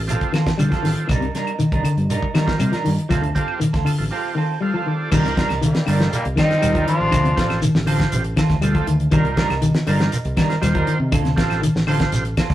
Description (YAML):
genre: afrobeat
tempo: 120 BPM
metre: 4/4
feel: straight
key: C dorian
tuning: A4 = 439 Hz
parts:
  - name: combo organ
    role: accompaniment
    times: 0.0-12.2 s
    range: G3 to G5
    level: -27 LUFS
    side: right 3 dB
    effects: none
  - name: fingered electric bass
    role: bass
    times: 0.0-12.5 s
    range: A1 to D3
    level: -23 LUFS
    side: equal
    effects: none
  - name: semi-hollow electric guitar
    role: stabs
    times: 0.1-12.5 s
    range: G3 to Bb4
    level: -27 LUFS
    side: right 5 dB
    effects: spring reverb
  - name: damped 70s drum kit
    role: drums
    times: 0.1-12.5 s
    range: crash cymbal, hi-hat, kick drum, snare drum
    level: -23 LUFS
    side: equal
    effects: none
  - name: shekere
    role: percussion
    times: 0.1-12.5 s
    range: none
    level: -27 LUFS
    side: right 1 dB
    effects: none
  - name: semi-hollow electric guitar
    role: arpeggios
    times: 0.3-12.1 s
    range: C3 to G3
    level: -21 LUFS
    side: left 2 dB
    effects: spring reverb, slapback echo
  - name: claves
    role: percussion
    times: 0.3-12.5 s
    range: none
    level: -34 LUFS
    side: left 3 dB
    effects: none
  - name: clear trombone section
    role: second line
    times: 5.6-7.6 s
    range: Bb2 to F3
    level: -28 LUFS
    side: right 1 dB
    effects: none
  - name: raspy tenor saxophone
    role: melody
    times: 5.7-7.6 s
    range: Bb3 to F4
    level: -22 LUFS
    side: left 1 dB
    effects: none
  - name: brilliant trumpet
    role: second line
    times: 5.7-7.6 s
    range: G3 to D4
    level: -31 LUFS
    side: right 1 dB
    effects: none
room: moderate studio reverb, RT60 0.7 s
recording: rough rehearsal-room recording, tube saturation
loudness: -17 LUFS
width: side -13 dB against mid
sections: 0.0-5.1 A section; 5.1-12.5 B section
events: break 4.1-5.1; transistor combo organ fill 4.1-5.1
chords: 0.0 Dm7; 1.1 Cm9; 3.1 Dm7; 5.1 Cm9; 7.1 Dm7; 9.1 Cm9; 11.1 Dm7